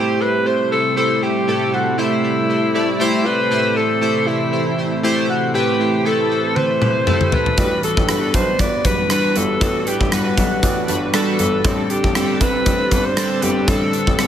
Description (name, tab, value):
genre	1980s-style pop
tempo	118 BPM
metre	4/4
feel	swing 55% on 16ths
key	A dorian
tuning	A4 = 440 Hz
part	raspy alto saxophone	melody	0.0-14.3 s	E4 to D5	-20 LUFS	left 1 dB	none
part	chorused retro synth keys	accompaniment	0.0-14.3 s	A2 to D5	-20 LUFS	equal	none
part	lush unison pad	sustained chords	0.0-14.3 s	C3 to C4	-25 LUFS	right 1 dB	chorus, phaser
part	gated 80s drum kit	drums	6.6-14.3 s	hi-hat, kick drum, rim click, toms	-20 LUFS	equal	none
part	warm baby grand piano	bass	7.6-14.3 s	F#1 to C2	-24 LUFS	left 1 dB	none
room	light reverb, small room ambience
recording	none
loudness	-15 LUFS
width	side -9 dB against mid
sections	0.0-14.3 A section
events	drum fill 6.6-7.6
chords	0.0 Am7; 7.6 Gmaj7; 11.6 D7sus4